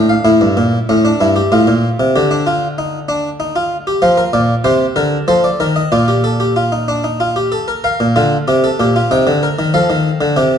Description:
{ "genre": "classical, baroque-style 3-part fugue for harpsichord", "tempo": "95 BPM", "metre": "3/4", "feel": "straight", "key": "Bb major from 4.0 s", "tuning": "A4 = 440 Hz", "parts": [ { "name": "harpsichord", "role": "solo", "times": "0.0-10.6 s", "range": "G2 to G5", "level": "-12 LUFS", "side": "equal", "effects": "none" } ], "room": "moderate recital hall reverb, RT60 1.5 s", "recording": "dark, warm production, nothing above 10.7 kHz", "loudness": "-12 LUFS", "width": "side -8 dB against mid", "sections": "0.3-7.8 A section; 7.8-10.6 B section", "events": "none", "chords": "0.3 A7(no3); 1.5 Fadd11/A; 2.1 G5/D; 4.0 Bb; 5.3 F7; 5.9 Bb; 9.1 Cm7; 9.7 F7", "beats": "| 0.25 0.89 1.52 | 2.15 2.78 3.40 | 4.03 4.65 5.29 | 5.92 6.56 7.20 | 7.84 8.48 9.11 | 9.74 10.37" }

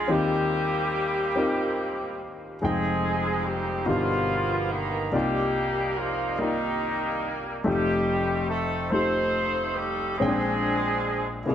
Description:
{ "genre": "gospel", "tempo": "48 BPM (dotted quarters)", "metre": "6/8", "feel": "straight", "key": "Eb major", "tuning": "A4 = 440 Hz", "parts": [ { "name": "warm horn section", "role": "melody", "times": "0.0-11.5 s", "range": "D#3 to C5", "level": "-26 LUFS", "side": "equal", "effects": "tape echo" }, { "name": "warm concert grand piano", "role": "accompaniment", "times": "0.0-11.5 s", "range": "F1 to G5", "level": "-27 LUFS", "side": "left 2 dB", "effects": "none" } ], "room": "moderate echo chamber reverb, RT60 1.7 s", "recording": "none", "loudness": "-23 LUFS", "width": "side -10 dB against mid", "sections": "0.0-11.5 A section", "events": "none", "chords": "0.1 Eb69; 2.6 Fm9; 3.9 G7alt; 5.1 Cm11; 7.7 F9; 10.2 Bb13", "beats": "| 0.09 1.36 | 2.62 3.88 | 5.14 6.41 | 7.67 8.93 | 10.19 11.45" }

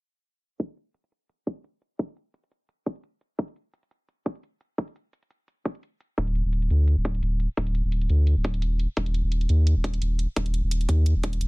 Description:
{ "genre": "liquid drum and bass", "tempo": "172 BPM", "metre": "4/4", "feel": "swing 54% on 16ths", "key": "unclear", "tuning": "A4 = 440 Hz", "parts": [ { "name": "electronic hi-hat", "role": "drums", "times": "0.6-11.5 s", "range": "none", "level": "-42 LUFS", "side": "right 2 dB", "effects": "small room ambience" }, { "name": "electronic kick drum", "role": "drums", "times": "0.6-11.3 s", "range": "none", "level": "-28 LUFS", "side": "equal", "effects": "high-pass filter on kick, small room ambience" }, { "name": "saturated sub bass", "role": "bass", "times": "6.2-11.5 s", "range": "D1 to Eb2", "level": "-22 LUFS", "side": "equal", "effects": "none" } ], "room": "little or no reverb", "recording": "low-pass filter", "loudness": "-24 LUFS", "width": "side -27 dB against mid", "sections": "0.6-11.5 A section", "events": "filter sweep 0.6-11.5", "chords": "none", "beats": "| 0.60 0.95 1.29 1.64 | 1.99 2.34 2.69 3.04 | 3.39 3.74 4.08 4.43 | 4.78 5.13 5.48 5.83 | 6.18 6.53 6.88 7.22 | 7.57 7.92 8.27 8.62 | 8.97 9.32 9.67 10.02 | 10.36 10.71 11.06 11.41" }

